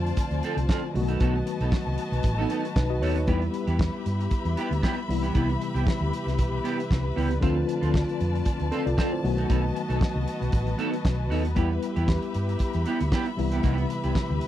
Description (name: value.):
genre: disco.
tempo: 116 BPM.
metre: 4/4.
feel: straight.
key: unclear.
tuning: A4 = 440 Hz.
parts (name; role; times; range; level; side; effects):
tine electric piano; accompaniment; 0.0-14.5 s; C3 to D#5; -30 LUFS; left 3 dB; medium stereo tremolo.
clear studio string section; sustained chords; 0.0-14.5 s; F4 to B5; -33 LUFS; left 3 dB; none.
hollow-body short-scale fingered electric bass; bass; 0.0-14.4 s; A1 to G2; -27 LUFS; equal; none.
clean electric guitar; accompaniment; 0.1-14.3 s; B3 to A4; -31 LUFS; right 5 dB; lush chorus.
warm soul drum kit; drums; 0.1-14.5 s; hi-hat, kick drum, snare drum; -25 LUFS; equal; none.
room: little or no reverb.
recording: dry, close 1970s-style studio recording.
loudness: -23 LUFS.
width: side -12 dB against mid.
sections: 0.0-14.5 A section.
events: none.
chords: 0.0 Dm7; 0.9 B7; 3.3 Em; 5.1 Cmaj7; 7.4 Dm7; 9.2 B7; 11.6 Em; 13.4 Cmaj7.